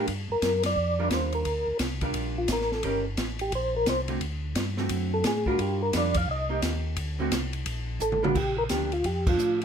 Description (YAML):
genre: soul jazz organ trio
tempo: 174 BPM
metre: 4/4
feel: swing 63% on 8ths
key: G minor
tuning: A4 = 441 Hz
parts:
  - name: percussive tonewheel organ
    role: melody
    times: 0.0-9.6 s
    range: F4 to F5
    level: -27 LUFS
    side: equal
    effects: chorus vibrato, slow rotary speaker
  - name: hollow-body jazz guitar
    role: accompaniment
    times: 0.0-9.6 s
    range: D3 to Bb4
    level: -32 LUFS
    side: right 3 dB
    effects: none
  - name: mellow tonewheel organ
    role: bass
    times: 0.0-9.6 s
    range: G1 to A2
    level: -31 LUFS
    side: equal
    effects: slow rotary speaker
  - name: open jazz drum kit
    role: drums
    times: 0.1-9.6 s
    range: crash cymbal, hi-hat, kick drum, ride cymbal, snare drum, toms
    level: -31 LUFS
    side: equal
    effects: none
room: moderate studio reverb, RT60 0.6 s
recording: minimal, uncompressed stereo recording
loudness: -25 LUFS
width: side -7 dB against mid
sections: 0.0-8.4 A section; 8.4-9.6 B section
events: tonewheel organ solo 0.0-8.4; drum fill 8.0-8.4; band accent 9.2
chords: 0.1 Gm7; 2.8 Eb7; 4.2 D7; 5.6 Gm7; 6.3 Cm7; 7.0 D7(no3); 8.4 Gm7